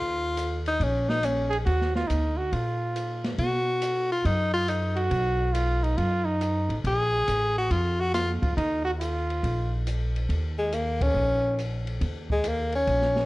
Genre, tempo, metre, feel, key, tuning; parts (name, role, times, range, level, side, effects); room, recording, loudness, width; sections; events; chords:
jazz, small-group swing and bop; 139 BPM; 4/4; swing 67% on 8ths; Eb minor; A4 = 440 Hz
edgy tenor saxophone; melody; 0.0-13.3 s; Ab3 to Ab4; -26 LUFS; left 1 dB; plate reverb
upright bass; bass; 0.0-13.3 s; A1 to B2; -28 LUFS; equal
open jazz drum kit; drums; 0.4-13.3 s; hi-hat, kick drum, ride cymbal, snare drum; -34 LUFS; equal
warm trumpet; second line; 1.5-9.8 s; D#4 to Ab4; -28 LUFS; right 2 dB
light reverb; worn, warbling old tape, cassette tape, warbly pitch drift; -24 LUFS; side -19 dB against mid
0.0-10.3 A section; 10.3-13.3 A section
band accent 10.9
0.0 Ebsus2; 3.4 B; 6.8 Bb5; 8.6 Ebsus2; 9.4 Bb5; 10.3 Eb7(no3)